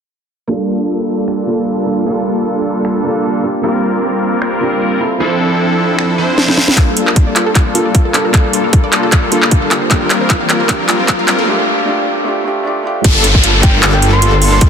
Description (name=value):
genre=future bass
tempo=153 BPM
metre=4/4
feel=swing 54% on 16ths, half-time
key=G dorian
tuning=A4 = 439 Hz
part: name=felt-muted upright piano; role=accompaniment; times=0.5-13.1 s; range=F3 to A4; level=-19 LUFS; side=right 1 dB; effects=sidechain pumping, ping-pong delay
part: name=big bright polysynth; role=riff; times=0.5-14.7 s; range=F3 to C5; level=-16 LUFS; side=left 1 dB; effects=sidechain pumping, ping-pong delay
part: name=trap drum kit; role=drums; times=1.3-14.7 s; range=crash cymbal, finger snaps, handclaps, hi-hat, snare drum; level=-15 LUFS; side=equal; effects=overdrive, high-pass filter on snare, low-pass filter on snare, high-pass filter on hats, low-pass filter on hats, high-pass filter on cymbals, low-pass filter on cymbals, high-pass filter on room, low-pass filter on room
part: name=wide unison pluck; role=arpeggios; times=6.8-14.7 s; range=F4 to F5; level=-21 LUFS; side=right 2 dB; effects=sidechain pumping, ping-pong delay
part: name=electronic kick drum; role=drums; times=6.8-14.7 s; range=none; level=-11 LUFS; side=equal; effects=overdrive
part: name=riser and downlifter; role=sound effects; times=8.5-14.7 s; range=none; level=-19 LUFS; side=left 1 dB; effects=none
part: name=airy dreamy lead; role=arpeggios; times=13.0-14.7 s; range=A4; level=-24 LUFS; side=right 1 dB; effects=none
part: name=wide detuned saw bass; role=bass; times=13.0-14.7 s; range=G1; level=-13 LUFS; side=equal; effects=chorus, sidechain pumping
part: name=soft struck synth lead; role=melody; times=13.6-14.7 s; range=G5 to C6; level=-17 LUFS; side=right 1 dB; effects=chorus, sidechain pumping, dub echo
room=moderate huge ambient reverb, RT60 4.1 s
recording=dense, heavily limited modern master, high-pass filter, low-pass filter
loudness=-11 LUFS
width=side -7 dB against mid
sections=0.5-6.8 A section; 6.8-13.0 B section; 13.0-14.7 C section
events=filter sweep on drum 0.5-6.8; filter sweep on analog polysynth 0.5-6.8, 6.8-13.0; filter sweep 0.5-6.8; drum fill 6.4-6.8, 6.8-11.5; build-up 6.8-13.0; filter sweep on synth arpeggio sound 6.8-13.0; riser 8.5-11.5; break 11.5-13.0; drop 13.0-14.7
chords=0.5 Gm9; 3.4 C7sus4; 5.0 Dm9; 6.8 Gm9; 9.7 C7sus4; 11.3 Dm; 13.0 Gm9